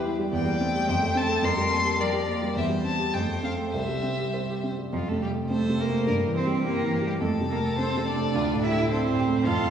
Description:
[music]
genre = quick classical-period movement for piano quartet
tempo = 106 BPM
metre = 2/4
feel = rubato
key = F major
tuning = A4 = 440 Hz
[part]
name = warm violin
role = melody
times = 0.0-9.7 s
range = F4 to C6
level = -30 LUFS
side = left 4 dB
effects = none
[part]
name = rich cello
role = second line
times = 0.0-9.7 s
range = F3 to F4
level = -29 LUFS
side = right 4 dB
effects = none
[part]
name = rich violin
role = second line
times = 0.0-9.7 s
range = F4 to D5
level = -34 LUFS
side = left 2 dB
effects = none
[part]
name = warm concert grand piano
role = accompaniment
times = 0.0-9.7 s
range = C2 to E5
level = -26 LUFS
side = equal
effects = none
[sound]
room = wet concert hall reverb, RT60 2.1 s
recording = recorded in a church or concert hall, studio ambience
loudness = -23 LUFS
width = side -8 dB against mid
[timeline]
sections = 0.0-4.9 A section; 4.9-9.7 B section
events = none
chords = 0.3 C/E; 0.9 F; 1.4 Gm7/F; 2.6 C/E; 3.1 F; 3.7 C; 4.9 F; 6.1 C/G; 7.2 F; 8.4 D5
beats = | 0.32 0.88 | 1.44 2.00 | 2.57 3.14 | 3.74 4.34 | 4.93 5.51 | 6.08 6.65 | 7.22 7.79 | 8.35 8.91 | 9.46

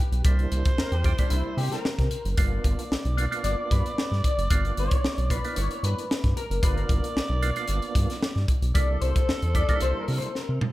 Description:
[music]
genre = funk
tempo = 113 BPM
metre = 4/4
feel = straight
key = unclear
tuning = A4 = 442 Hz
[part]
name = clean electric guitar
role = accompaniment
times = 0.0-10.6 s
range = D4 to D5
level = -33 LUFS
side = left 4 dB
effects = analog chorus
[part]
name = round analog bass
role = bass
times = 0.1-10.6 s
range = F#1 to C3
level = -27 LUFS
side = equal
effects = none
[part]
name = crisp fusion drum kit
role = drums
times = 0.1-10.7 s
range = hi-hat, kick drum, snare drum, toms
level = -25 LUFS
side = equal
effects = none
[part]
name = percussive tonewheel organ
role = stabs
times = 0.2-10.3 s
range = G3 to G4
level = -34 LUFS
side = right 4 dB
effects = chorus vibrato, slow rotary speaker
[part]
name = growling tenor saxophone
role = second line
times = 0.3-10.6 s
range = A4 to D5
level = -35 LUFS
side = right 2 dB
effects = tape echo
[sound]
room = light reverb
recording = none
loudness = -23 LUFS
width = side -17 dB against mid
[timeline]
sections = 0.0-10.7 A section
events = clean electric guitar solo 0.0-10.7; drum fill 10.3-10.7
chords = 0.2 C9; 2.4 G7#9; 8.8 C9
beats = | 0.25 0.78 1.31 1.85 | 2.38 2.91 3.44 3.97 | 4.50 5.04 5.57 6.10 | 6.63 7.16 7.69 8.22 | 8.75 9.28 9.81 10.35

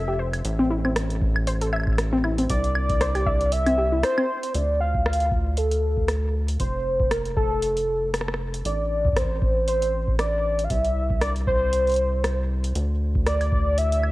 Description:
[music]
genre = IDM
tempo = 117 BPM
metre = 4/4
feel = swing 56% on 16ths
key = D minor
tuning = A4 = 438 Hz
[part]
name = warm velvety synth lead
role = melody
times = 0.0-14.1 s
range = A4 to F5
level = -25 LUFS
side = equal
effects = chorus, cassette tape, tape echo
[part]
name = warbly dusty pluck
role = arpeggios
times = 0.0-4.3 s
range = C4 to E5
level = -26 LUFS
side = left 1 dB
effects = chorus, cassette tape, analog delay
[part]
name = rubbery square bass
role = bass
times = 0.0-14.1 s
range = F1 to D2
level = -25 LUFS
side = equal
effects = none
[part]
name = booming analog drum machine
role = drums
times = 0.3-14.1 s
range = hi-hat, rim click, woodblock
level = -29 LUFS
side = equal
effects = cassette tape
[part]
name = electronic kick drum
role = drums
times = 1.2-13.6 s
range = none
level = -26 LUFS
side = equal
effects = cassette tape
[sound]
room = light reverb, digital ambience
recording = home recording on cassette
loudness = -21 LUFS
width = side -18 dB against mid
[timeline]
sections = 0.0-4.5 A section; 4.5-14.1 B section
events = break 4.0-4.5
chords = 0.4 Am; 2.5 C; 4.5 Dm; 6.6 F; 8.7 Am; 10.7 C; 12.8 Dsus2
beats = | 0.45 0.96 1.47 1.98 | 2.50 3.01 3.52 4.04 | 4.55 5.06 5.57 6.09 | 6.60 7.11 7.62 8.14 | 8.65 9.16 9.68 10.19 | 10.70 11.21 11.73 12.24 | 12.75 13.27 13.78

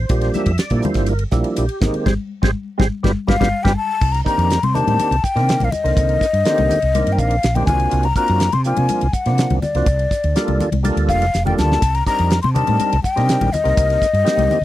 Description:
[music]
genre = electric jazz fusion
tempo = 123 BPM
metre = 4/4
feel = straight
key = G dorian, C dorian from 4.0 s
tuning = A4 = 440 Hz
[part]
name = percussive tonewheel organ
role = accompaniment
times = 0.0-14.6 s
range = D3 to E5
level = -22 LUFS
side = right 3 dB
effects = slow rotary speaker, overdrive, chorus vibrato
[part]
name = woody fretless electric bass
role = bass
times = 0.0-14.6 s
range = F1 to C3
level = -19 LUFS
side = equal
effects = none
[part]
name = damped 70s drum kit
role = drums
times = 0.1-14.6 s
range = crash cymbal, hi-hat, kick drum, ride cymbal, snare drum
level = -21 LUFS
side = right 1 dB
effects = none
[part]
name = congas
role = percussion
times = 0.4-14.6 s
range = none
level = -24 LUFS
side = left 4 dB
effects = none
[part]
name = breathy mellow concert flute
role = melody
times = 3.3-14.6 s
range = D5 to C6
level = -19 LUFS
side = left 4 dB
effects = none
[sound]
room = little or no reverb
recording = dry, close 1970s-style studio recording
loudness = -15 LUFS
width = side -14 dB against mid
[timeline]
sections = 0.0-4.0 A section; 4.0-14.6 B section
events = band accent 2.1-4.0; drum fill 3.8, 11.3-11.8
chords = 0.1 Bb6; 1.8 Abmaj9; 3.0 G7; 4.0 Cm9; 7.7 D7alt/C; 9.9 Gm9/C; 11.8 Cm9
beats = | 0.10 0.59 1.08 1.57 | 2.06 2.55 3.04 3.53 | 4.01 4.50 4.99 5.48 | 5.97 6.46 6.94 7.43 | 7.92 8.41 8.89 9.38 | 9.87 10.36 10.85 11.34 | 11.82 12.31 12.80 13.29 | 13.78 14.26

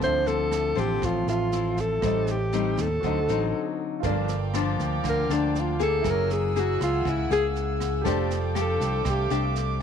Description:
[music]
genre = bossa nova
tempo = 120 BPM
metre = 4/4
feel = straight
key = D minor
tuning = A4 = 441 Hz
[part]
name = breathy alto saxophone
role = melody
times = 0.0-9.3 s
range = D4 to C5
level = -27 LUFS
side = right 1 dB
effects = none
[part]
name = nylon-string guitar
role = accompaniment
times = 0.0-9.8 s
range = G2 to Ab4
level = -28 LUFS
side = left 12 dB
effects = none
[part]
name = warm concert grand piano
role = accompaniment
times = 0.0-9.8 s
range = E4 to E5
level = -35 LUFS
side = right 15 dB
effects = none
[part]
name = fingered electric bass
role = bass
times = 0.0-9.8 s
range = F1 to Eb2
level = -28 LUFS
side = right 2 dB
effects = none
[part]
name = jazz brush drum kit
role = drums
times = 0.0-9.6 s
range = kick drum, rim click, snare drum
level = -37 LUFS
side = right 6 dB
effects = none
[part]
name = warm studio violin section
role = sustained chords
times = 4.0-9.8 s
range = A4 to E6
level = -34 LUFS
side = right 3 dB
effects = none
[sound]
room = light reverb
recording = 1960s-style stereo with parts hard left and right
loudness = -23 LUFS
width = side -7 dB against mid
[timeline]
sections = 0.0-4.0 A section; 4.0-9.8 B section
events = break 3.5-4.0; alto saxophone solo 4.0-9.8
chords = 0.0 Dm9; 2.0 Am7b5; 3.0 D7b9; 4.0 Gm7; 6.0 F#9; 8.1 F69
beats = | 0.02 0.52 1.02 1.53 | 2.03 2.53 3.03 3.54 | 4.04 4.54 5.04 5.54 | 6.05 6.55 7.05 7.55 | 8.05 8.56 9.06 9.56

